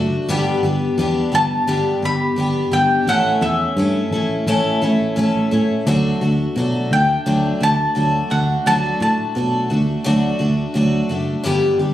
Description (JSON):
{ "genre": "folk rock and heartland rock", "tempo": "86 BPM", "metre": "4/4", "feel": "straight", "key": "unclear", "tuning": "A4 = 440 Hz", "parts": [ { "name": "picked twelve-string acoustic guitar", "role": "accompaniment", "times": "0.0-11.9 s", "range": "G2 to A4", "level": "-19 LUFS", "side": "left 2 dB", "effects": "none" }, { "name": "fingered electric bass", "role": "bass", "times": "0.0-11.9 s", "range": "F#1 to B2", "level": "-20 LUFS", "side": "right 1 dB", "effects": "none" }, { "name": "mandolin", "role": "melody", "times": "1.3-11.1 s", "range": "E5 to B5", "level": "-19 LUFS", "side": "equal", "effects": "slapback echo" } ], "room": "light reverb, studio reverb", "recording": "recorded on a phone in the room, club reverb, compression", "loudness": "-16 LUFS", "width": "side -12 dB against mid", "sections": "0.0-11.9 A section", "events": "none", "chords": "0.3 G; 3.1 A; 5.9 D" }